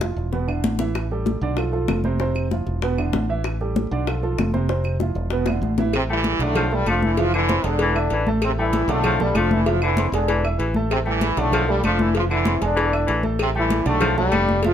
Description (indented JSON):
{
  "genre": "latin, salsa",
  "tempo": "193 BPM",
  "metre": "4/4",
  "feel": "straight",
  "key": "A minor",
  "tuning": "A4 = 442 Hz",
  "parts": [
    { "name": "warm grand piano", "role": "accompaniment", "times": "0.0-14.7 s", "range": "B2 to E6", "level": "-26 LUFS", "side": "right 4 dB", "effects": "none" },
    { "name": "fingered electric bass", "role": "bass", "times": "0.0-14.7 s", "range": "E1 to B1", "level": "-24 LUFS", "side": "equal", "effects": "none" },
    { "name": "bongos and cowbell", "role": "percussion", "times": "0.0-14.7 s", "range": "none", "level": "-28 LUFS", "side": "left 4 dB", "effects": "none" },
    { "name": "congas", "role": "percussion", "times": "0.0-14.7 s", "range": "none", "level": "-26 LUFS", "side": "left 1 dB", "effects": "none" },
    { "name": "claves", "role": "percussion", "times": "0.5-14.5 s", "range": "none", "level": "-34 LUFS", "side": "right 3 dB", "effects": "none" },
    { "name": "brilliant trombone section", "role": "melody", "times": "5.9-14.7 s", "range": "G2 to F4", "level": "-22 LUFS", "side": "equal", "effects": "none" },
    { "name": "breathy baritone saxophone", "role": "second line", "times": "6.1-14.6 s", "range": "D3 to A3", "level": "-26 LUFS", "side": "left 4 dB", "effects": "none" }
  ],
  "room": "light reverb",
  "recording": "none",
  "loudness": "-19 LUFS",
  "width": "side -9 dB against mid",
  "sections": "0.0-5.9 A section; 5.9-14.7 B section",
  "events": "drum fill 0.0-1.0, 5.5-5.9",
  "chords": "0.3 E5; 1.0 A5; 1.6 F; 2.2 F5; 2.8 E5; 3.4 A5; 4.1 F; 4.7 F5; 5.3 E5; 5.9 A7(no3); 6.6 Bm7b5; 7.2 Fmaj7(no3); 7.8 E7; 8.4 A7(no3); 9.0 Bm7b5; 9.7 Fmaj7(no3); 10.3 E7; 10.9 A7(no3); 11.5 Bm7b5; 12.2 Fmaj7(no3); 12.8 E7; 13.4 A7(no3); 14.0 Bm7b5",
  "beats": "0.02 0.33 0.65 | 0.96 1.27 1.58 1.89 | 2.20 2.51 2.83 3.14 | 3.45 3.76 4.07 4.38 | 4.69 5.00 5.32 5.63 | 5.94 6.25 6.56 6.87 | 7.18 7.49 7.80 8.11 | 8.42 8.73 9.04 9.35 | 9.66 9.97 10.29 10.60 | 10.91 11.22 11.53 11.84 | 12.15 12.46 12.77 13.08 | 13.39 13.71 14.02 14.33 | 14.64"
}